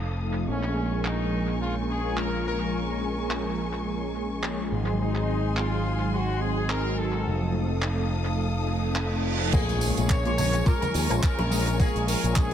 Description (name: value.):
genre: nu-disco, nu disco.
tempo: 106 BPM.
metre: 4/4.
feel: swing 56% on 16ths.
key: Bb minor.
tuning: A4 = 441 Hz.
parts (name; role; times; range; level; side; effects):
warm studio string section; sustained chords; 0.0-12.5 s; Ab4 to Eb6; -35 LUFS; left 4 dB; sidechain pumping, low-pass filter.
picked electric bass with an envelope filter; bass; 0.0-12.5 s; F1 to Eb2; -28 LUFS; equal; tube saturation.
warm analog pad; accompaniment; 0.2-12.5 s; F3 to A4; -29 LUFS; equal; chorus, vintage 12-bit sampler grit, sidechain pumping, analog delay.
clear trumpet section; melody; 0.5-12.5 s; Db4 to Db5; -32 LUFS; left 1 dB; analog delay.
damped 70s drum kit; drums; 0.6-12.5 s; crash cymbal, handclaps, hi-hat, tambourine, woodblock; -34 LUFS; right 1 dB; low-pass filter on hats, low-pass filter on cymbals, low-pass filter on snare, low-pass filter on perc, low-pass filter on room, analog delay.
reverse cymbal and impact; sound effects; 8.8-11.8 s; none; -35 LUFS; right 2 dB; none.
electric guitar with an envelope filter; riff; 9.5-12.5 s; Bb2 to Bb4; -34 LUFS; left 3 dB; wide subtle chorus, analog delay.
electronic kick drum; drums; 9.5-12.5 s; none; -23 LUFS; equal; none.
tambourine, bongos and congas; percussion; 9.5-12.5 s; none; -36 LUFS; right 2 dB; analog delay.
room: moderate spring reverb, RT60 2.1 s.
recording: echo-heavy mix.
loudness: -24 LUFS.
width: side -10 dB against mid.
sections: 0.0-9.5 A section; 9.5-12.5 B section.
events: reverse cymbal 8.8-9.5; drop 9.5-12.5; impact 9.5-11.8.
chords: 0.5 Bbm7; 4.7 Ab7; 7.3 F7; 9.5 Bbm7.